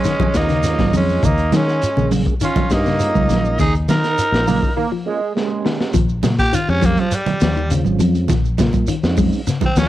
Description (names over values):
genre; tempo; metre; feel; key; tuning
afrobeat; 102 BPM; 4/4; straight; Bb dorian; A4 = 440 Hz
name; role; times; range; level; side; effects
growling tenor saxophone; melody; 0.0-4.7 s; Db4 to Bb4; -20 LUFS; equal; cassette tape
clear trumpet; second line; 0.0-4.7 s; Ab3 to Eb4; -26 LUFS; right 5 dB; cassette tape
clean electric guitar; arpeggios; 0.0-9.9 s; Db3 to Ab3; -23 LUFS; left 6 dB; phaser, cassette tape
crunchy breakbeat drum kit; drums; 0.0-9.9 s; hi-hat, kick drum, snare drum; -22 LUFS; left 1 dB; cassette tape
shekere; percussion; 0.0-9.9 s; none; -26 LUFS; right 2 dB; none
congas; percussion; 0.2-9.8 s; none; -21 LUFS; right 6 dB; none
percussive tonewheel organ; accompaniment; 0.3-9.9 s; Ab3 to Ab4; -27 LUFS; right 6 dB; slow rotary speaker, chorus vibrato, cassette tape
fingered electric bass; bass; 0.3-9.9 s; Ab1 to Eb3; -19 LUFS; left 1 dB; transformer saturation
warm trombone section; second line; 4.5-5.9 s; Ab3 to Bb3; -22 LUFS; right 6 dB; cassette tape
breathy tenor saxophone; melody; 6.4-9.9 s; F3 to G4; -20 LUFS; equal; cassette tape
room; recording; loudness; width
small room ambience; home recording on cassette; -15 LUFS; side -14 dB against mid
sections
0.0-5.9 A section; 5.9-9.9 B section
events
break 4.8-5.9; drum fill 5.4-5.9; tenor saxophone solo 5.9-9.9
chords
0.0 Bbm7; 1.2 Eb7sus4; 5.9 Bbm7